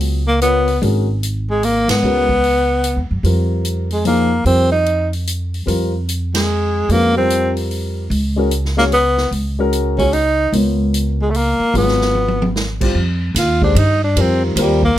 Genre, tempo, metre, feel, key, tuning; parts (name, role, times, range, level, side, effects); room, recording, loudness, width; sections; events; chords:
modal jazz; 148 BPM; 3/4; swing 64% on 8ths; A4 = 440 Hz
warm upright piano; accompaniment; 0.0-14.8 s; F3 to Db5; -21 LUFS; left 2 dB
upright bass; bass; 0.0-15.0 s; Ab1 to Ab2; -18 LUFS; equal
swinging big-band drum kit; drums; 0.0-14.9 s; crash cymbal, hi-hat, kick drum, ride cymbal, snare drum, toms; -24 LUFS; right 1 dB
breathy tenor saxophone; melody; 0.3-15.0 s; Eb3 to F4; -16 LUFS; equal
little or no reverb; close, detailed microphones; -14 LUFS; side -13 dB against mid
0.0-13.0 A section; 13.0-15.0 B section
band accent 1.8, 6.3; drum fill 12.2-12.6; tenor saxophone solo 13.0-15.0
0.0 Db7sus4; 3.2 Fsus4; 8.1 Db7sus4; 13.0 F9sus4